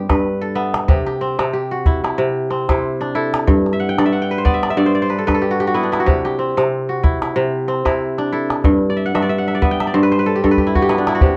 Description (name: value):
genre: west african traditional, West African string and xylophone music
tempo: 93 BPM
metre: 4/4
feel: swing 56% on 16ths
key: unclear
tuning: A4 = 440 Hz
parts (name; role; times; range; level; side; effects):
- kora; arpeggios; 0.0-11.4 s; G2 to G5; -19 LUFS; equal; none
- calabash; percussion; 0.1-11.4 s; none; -20 LUFS; equal; none
room: wet small room reverb, RT60 0.5 s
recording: worn, warbling old tape, cassette tape, warbly pitch drift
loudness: -17 LUFS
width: mono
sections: 0.0-11.2 A section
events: kora fill 3.7-6.1, 8.9-11.2; drum fill 10.4-11.2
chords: 0.0 G; 0.9 C; 3.5 G; 6.1 C; 8.6 G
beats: 0.23 | 0.88 1.53 2.18 2.83 | 3.48 4.12 4.77 5.42 | 6.06 6.71 7.35 8.00 | 8.64 9.29 9.93 10.57 | 11.22